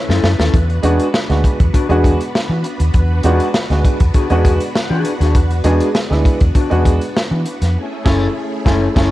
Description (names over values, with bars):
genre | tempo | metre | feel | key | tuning
funk | 100 BPM | 4/4 | straight | unclear | A4 = 440 Hz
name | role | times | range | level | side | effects
string machine, violins | sustained chords | 0.0-9.1 s | A3 to B4 | -25 LUFS | equal | ensemble chorus
dark upright piano | stabs | 0.0-9.1 s | G#3 to C#5 | -20 LUFS | right 3 dB | none
mellow electric guitar | accompaniment | 0.1-9.1 s | C#4 to B4 | -20 LUFS | left 5 dB | none
vintage muted fingered electric bass | bass | 0.1-9.1 s | F#1 to E3 | -15 LUFS | equal | none
crunchy breakbeat drum kit | drums | 0.1-9.1 s | crash cymbal, hi-hat, kick drum, snare drum | -16 LUFS | equal | none
room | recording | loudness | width
small room ambience | dark, warm production | -13 LUFS | side -16 dB against mid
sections
0.0-9.1 A section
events
upright piano fill 0.0-0.5; drum fill 0.0-0.5; band accent 7.8-9.1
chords
0.0 F#m7; 0.5 E9; 7.8 F#m7